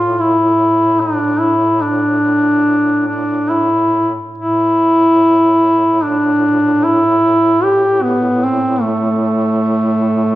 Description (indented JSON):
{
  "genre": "caucasian folk, Caucasian lament",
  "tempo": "free time",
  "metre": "none",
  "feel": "none",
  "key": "unclear",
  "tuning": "A4 = 440 Hz",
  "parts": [
    { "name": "mellow duduk", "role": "melody", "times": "0.0-10.4 s", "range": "A3 to G4", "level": "-12 LUFS", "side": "equal", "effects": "none" },
    { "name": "warm duduk", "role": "drone", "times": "0.0-10.4 s", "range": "A2", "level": "-23 LUFS", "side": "left 1 dB", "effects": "none" }
  ],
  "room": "wet recital hall reverb, RT60 1.5 s",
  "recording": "recorded in a church or concert hall",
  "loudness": "-11 LUFS",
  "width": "side -15 dB against mid",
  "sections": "0.0-10.4 A section",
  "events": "none",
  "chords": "none"
}